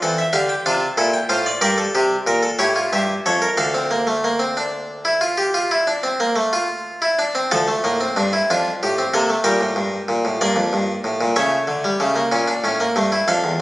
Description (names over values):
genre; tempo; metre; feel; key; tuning
classical, baroque-style 4-part fugue for harpsichord; 62 BPM (dotted quarters); 12/8; straight; D minor; A4 = 439 Hz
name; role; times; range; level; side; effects
harpsichord; solo; 0.0-13.6 s; D2 to A5; -17 LUFS; equal; none
room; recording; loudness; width
moderate concert hall reverb, RT60 1.8 s; recorded on a phone in the room, studio reverb, compression, nothing above 10.9 kHz; -17 LUFS; side -17 dB against mid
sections
0.0-7.5 A section; 7.5-13.6 B section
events
none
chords
0.0 Dm; 1.6 Gmadd9; 2.6 A7; 3.6 Dm; 9.4 Gm; 11.4 A7/C#